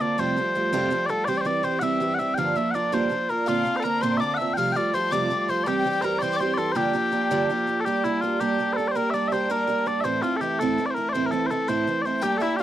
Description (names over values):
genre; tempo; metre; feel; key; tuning
celtic folk, Celtic jig; 110 BPM (dotted quarters); 6/8; straight; G dorian; A4 = 439 Hz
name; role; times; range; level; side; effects
mellow small bagpipes; melody; 0.0-12.6 s; E4 to G5; -24 LUFS; left 2 dB; none
picked twelve-string acoustic guitar; accompaniment; 0.0-12.6 s; F2 to G4; -25 LUFS; right 4 dB; none
breathy tin whistle; second line; 3.5-7.5, 12.2-12.6 s; E5 to F6; -30 LUFS; left 5 dB; none
room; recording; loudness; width
light reverb; dry, close 1970s-style studio recording; -22 LUFS; side -12 dB against mid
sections
0.0-7.9 A section; 7.9-12.6 B section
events
none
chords
0.2 Fadd9; 1.3 C/E; 2.4 Gm7; 3.5 Bbadd9; 4.6 Fadd9; 5.7 C/E; 6.8 Gm7; 7.9 Gm; 10.0 Am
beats
| 0.19 0.74 | 1.28 1.83 | 2.38 2.93 | 3.47 4.02 | 4.57 5.12 | 5.66 6.21 | 6.76 7.30 | 7.85 8.40 | 8.95 9.49 | 10.04 10.59 | 11.14 11.69 | 12.23